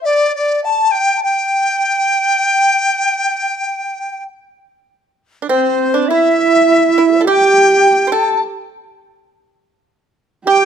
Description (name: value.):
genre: chinese traditional, Chinese chamber ensemble.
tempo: 102 BPM.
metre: 4/4.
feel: rubato.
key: G zhi mode.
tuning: A4 = 440 Hz.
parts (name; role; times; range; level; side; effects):
dizi; melody; 0.0-10.7 s; C5 to A5; -15 LUFS; left 1 dB; none.
reedy large dizi; second line; 0.0-10.7 s; G4 to A5; -17 LUFS; left 1 dB; none.
pipa; second line; 5.4-10.7 s; C4 to C5; -19 LUFS; right 7 dB; none.
dark horsehead fiddle; second line; 5.5-10.7 s; C4 to G4; -14 LUFS; right 4 dB; none.
room: light reverb.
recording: close, detailed microphones.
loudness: -11 LUFS.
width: side -8 dB against mid.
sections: 0.0-4.9 A section; 4.9-10.7 B section.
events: none.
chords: none.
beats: | 0.07 0.65 1.24 1.83 | 2.43 3.04 3.64 4.27 | 4.89 5.49 6.08 6.67 | 7.25 7.84 8.42 9.00 | 9.59 10.17.